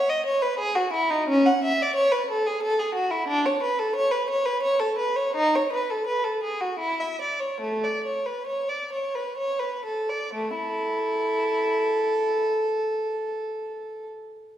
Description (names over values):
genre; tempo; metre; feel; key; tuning
classical, baroque-style suite movement for unaccompanied violin; 61-92 BPM; 3/4; rubato; A major; A4 = 438 Hz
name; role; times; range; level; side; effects
rich violin; solo; 0.0-14.1 s; A3 to F#5; -23 LUFS; equal; none
room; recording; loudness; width
wet recital hall reverb, RT60 1.4 s; heard from further back in the room; -23 LUFS; side -11 dB against mid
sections
0.0-10.4 A section; 10.4-14.6 B section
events
slowing down 4.3-10.4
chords
0.0 F#5; 1.3 A/C#; 3.3 B7(no3); 5.3 B7/D#; 6.8 C#m/E; 7.6 A; 10.4 A5